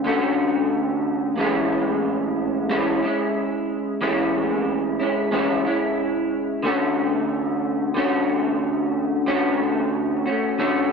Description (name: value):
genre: indie pop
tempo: 91 BPM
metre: 4/4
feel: swing 55% on 16ths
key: A major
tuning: A4 = 440 Hz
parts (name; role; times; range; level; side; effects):
- electric guitar through a small old amp; solo; 0.0-10.9 s; A2 to F#4; -20 LUFS; equal; analog chorus, vibrato effect
room: light reverb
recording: none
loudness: -20 LUFS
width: side -5 dB against mid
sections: 0.0-10.9 A section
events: none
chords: 0.0 Dmaj7; 1.4 Amaj7; 6.6 Dmaj7